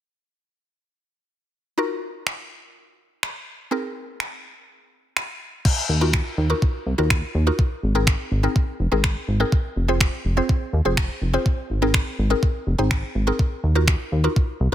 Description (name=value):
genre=dance-pop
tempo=124 BPM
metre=4/4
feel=straight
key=Eb dorian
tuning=A4 = 440 Hz
part: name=mallet-like synth pluck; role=accompaniment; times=1.8-14.7 s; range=C4 to C5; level=-25 LUFS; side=equal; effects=chorus, phaser, sidechain pumping
part: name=clean 12-bit digital drum machine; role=drums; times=2.3-14.5 s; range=crash cymbal, finger snaps, kick drum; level=-21 LUFS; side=equal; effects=soft clipping on snare
part: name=chorused synth bass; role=bass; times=5.9-14.7 s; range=F1 to Eb2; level=-21 LUFS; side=equal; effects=sidechain pumping
room=little or no reverb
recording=dense, heavily limited modern master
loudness=-20 LUFS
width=side -12 dB against mid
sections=1.8-5.7 A section; 5.7-14.7 B section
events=kick muted 3.7-5.7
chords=1.8 Ebmadd9; 3.7 Abadd9; 5.7 Ebmadd9; 7.6 Abadd9; 9.5 Fm; 11.5 Abadd9; 13.4 Ebmadd9